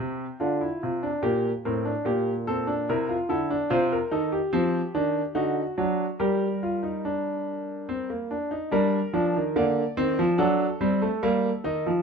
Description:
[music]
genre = classical, baroque-style 3-part fugue for grand piano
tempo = 72 BPM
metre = 3/4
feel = straight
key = G minor from 3.7 s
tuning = A4 = 438 Hz
[part]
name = clear concert grand piano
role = solo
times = 0.0-12.0 s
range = A2 to D5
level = -23 LUFS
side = equal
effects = none
[sound]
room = moderate stone room reverb, RT60 0.9 s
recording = none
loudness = -23 LUFS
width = side -5 dB against mid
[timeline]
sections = 0.0-8.7 A section; 8.7-12.0 B section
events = none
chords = 0.4 Dm; 1.2 Gm; 2.9 C; 3.7 Cm; 5.4 D; 6.2 Gm; 10.4 D7/F#; 11.2 Gm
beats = 0.40 | 1.23 2.05 2.88 | 3.71 4.53 5.36 | 6.20 7.04 7.89 | 8.73 9.57 10.40 | 11.22

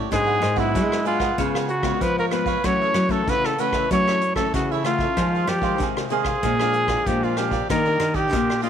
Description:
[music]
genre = samba and choro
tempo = 95 BPM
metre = 4/4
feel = straight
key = unclear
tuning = A4 = 440 Hz
[part]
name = cavaquinho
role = accompaniment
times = 0.0-8.7 s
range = D4 to F#5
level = -29 LUFS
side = right 13 dB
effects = none
[part]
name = nylon-string guitar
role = accompaniment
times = 0.0-8.7 s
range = F2 to G4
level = -28 LUFS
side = left 11 dB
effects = none
[part]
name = nylon-string guitar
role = bass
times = 0.0-8.7 s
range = G#2 to G#3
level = -25 LUFS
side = equal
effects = none
[part]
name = warm trumpet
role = melody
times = 0.1-8.7 s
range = E4 to C#5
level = -23 LUFS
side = equal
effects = none
[part]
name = vintage brush drum kit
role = drums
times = 0.1-8.7 s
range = hi-hat, kick drum, rim click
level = -29 LUFS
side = equal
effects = none
[sound]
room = light reverb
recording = 1960s-style stereo with parts hard left and right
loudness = -19 LUFS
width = side -8 dB against mid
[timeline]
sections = 0.0-8.7 A section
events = none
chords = 0.1 G#m7b5; 1.4 C#7; 2.6 F#m7; 5.2 Fm7; 6.4 Bb7; 7.7 Ebmaj7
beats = | 0.12 0.75 1.38 2.02 | 2.65 3.28 3.91 4.54 | 5.18 5.81 6.44 7.07 | 7.70 8.33

